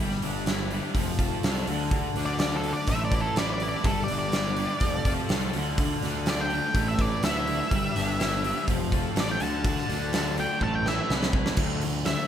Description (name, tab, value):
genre	classic rock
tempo	124 BPM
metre	4/4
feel	straight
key	unclear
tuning	A4 = 439 Hz
part	distorted electric guitar	riff	0.0-12.3 s	A2 to B4	-34 LUFS	right 9 dB	distortion
part	overdriven semi-hollow guitar	riff	0.0-12.3 s	D3 to B4	-33 LUFS	left 7 dB	none
part	fuzz picked electric bass	bass	0.0-12.1 s	F1 to D2	-31 LUFS	equal	overdrive
part	big rock drum kit	drums	0.1-12.2 s	crash cymbal, hi-hat, kick drum, snare drum	-28 LUFS	equal	none
part	octave-fuzz lead guitar	melody	2.3-12.3 s	A4 to A5	-30 LUFS	equal	distortion
part	bright tonewheel organ	sustained chords	3.6-12.3 s	A3 to F5	-42 LUFS	right 1 dB	none
room	light reverb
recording	none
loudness	-24 LUFS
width	side -9 dB against mid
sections	0.0-11.6 A section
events	lead electric guitar solo 0.0-11.6; drum fill 10.6-11.6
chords	0.0 G5; 1.0 F; 1.7 Dm; 2.9 Asus2; 3.9 G6; 4.8 Fadd9; 5.5 Dm; 6.8 Amadd9; 7.7 G6; 8.7 Fadd9; 9.4 Dm; 10.6 Amadd9; 11.6 Dmadd9